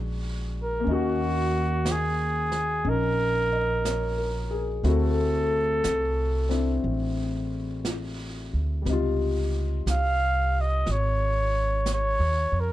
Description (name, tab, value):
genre	jazz ballad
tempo	60 BPM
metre	4/4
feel	swing 68% on 8ths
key	unclear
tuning	A4 = 441 Hz
part	clear concert grand piano	accompaniment	0.0-12.7 s	B#2 to D#5	-31 LUFS	left 5 dB	none
part	upright bass	bass	0.0-12.7 s	G#1 to E#2	-27 LUFS	equal	none
part	warm flugelhorn	melody	0.6-12.7 s	F#4 to E#5	-26 LUFS	right 1 dB	none
part	jazz brush drum kit	drums	0.9-12.7 s	brushed snare drum, hi-hat, snare drum	-38 LUFS	right 2 dB	none
room	light reverb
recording	dark, warm production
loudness	-23 LUFS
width	side -14 dB against mid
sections	0.0-12.7 A section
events	none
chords	0.0 A#7alt; 0.9 D#m7; 4.8 D9; 8.9 C#maj9#11